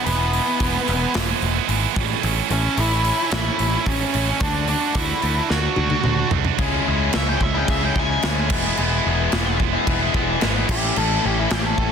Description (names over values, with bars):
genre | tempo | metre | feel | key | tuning
quiet-loud alternative rock | 110 BPM | 4/4 | straight | E mixolydian | A4 = 441 Hz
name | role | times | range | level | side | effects
octave-fuzz lead guitar | melody | 0.0-11.9 s | B3 to G#5 | -25 LUFS | left 2 dB | distortion, digital delay
heavy high-gain guitar | riff | 0.0-11.9 s | A2 to F#4 | -23 LUFS | right 16 dB | distortion
overdriven picked electric bass | bass | 0.1-11.9 s | E1 to D2 | -24 LUFS | equal | none
big rock drum kit | drums | 0.1-11.9 s | crash cymbal, hi-hat, kick drum, snare drum, toms | -24 LUFS | equal | soft clipping on snare
distorted electric guitar | riff | 6.6-11.9 s | A2 to E4 | -23 LUFS | left 16 dB | overdrive
room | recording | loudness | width
little or no reverb | dense, heavily limited modern master | -18 LUFS | side -7 dB against mid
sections
0.0-6.6 A section; 6.6-11.9 B section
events
half time 0.0-6.6; drum fill 5.5-6.6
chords
0.0 E; 2.0 A; 4.4 D; 6.6 C#m; 8.5 E; 10.7 A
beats
| 0.06 0.60 1.15 1.69 | 2.24 2.78 3.33 3.87 | 4.42 4.96 5.51 6.05 | 6.60 7.14 7.69 8.23 | 8.78 9.33 9.87 10.42 | 10.97 11.51